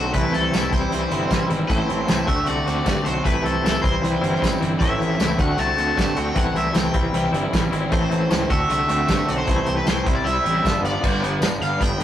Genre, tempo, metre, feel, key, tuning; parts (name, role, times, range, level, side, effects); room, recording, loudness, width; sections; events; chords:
indie rock; 154 BPM; 4/4; straight; A dorian; A4 = 439 Hz
cranked stack guitar; melody; 0.0-12.0 s; A4 to A5; -25 LUFS; equal; overdrive
sludgy distorted guitar; riff; 0.0-12.0 s; G2 to F#4; -29 LUFS; right 4 dB; overdrive
twangy electric guitar; riff; 0.0-12.0 s; G2 to F#4; -23 LUFS; left 1 dB; tremolo
fuzz picked electric bass; bass; 0.0-12.0 s; G1 to G2; -26 LUFS; equal; overdrive
loose indie drum kit; drums; 0.1-12.0 s; crash cymbal, hi-hat, kick drum, snare drum, tambourine; -23 LUFS; equal
moderate studio reverb, RT60 0.5 s; rough rehearsal-room recording, tube saturation; -18 LUFS; side -11 dB against mid
0.0-11.0 A section; 11.0-12.0 B section
0.1 Am/C; 0.7 C; 1.7 Am; 2.3 D7; 3.3 Am/C; 3.8 C; 4.8 Am; 5.4 D7; 6.4 Am/C; 7.0 C; 7.9 Am; 8.5 D7; 9.5 Am/C; 10.1 C; 10.6 G7; 11.0 G